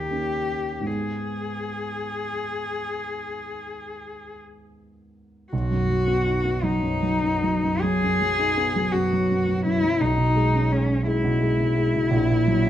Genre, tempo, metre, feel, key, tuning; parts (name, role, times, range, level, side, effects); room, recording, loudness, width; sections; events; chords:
classical, romantic duo for cello and grand piano; 50-57 BPM (dotted quarters); 12/8; rubato; G# minor, B major from 5.5 s; A4 = 440 Hz
warm cello; melody; 0.0-12.7 s; C#4 to G#4; -24 LUFS; left 3 dB
dark concert grand piano; accompaniment; 0.0-12.7 s; A#1 to D#4; -24 LUFS; right 2 dB
moderate recital hall reverb, RT60 1.4 s; close, detailed microphones; -21 LUFS; side -11 dB against mid
0.0-5.5 A section; 5.5-12.7 B section
0.0 D#7; 0.9 G#m; 5.5 B; 10.0 C#m7/B; 12.1 F#/A#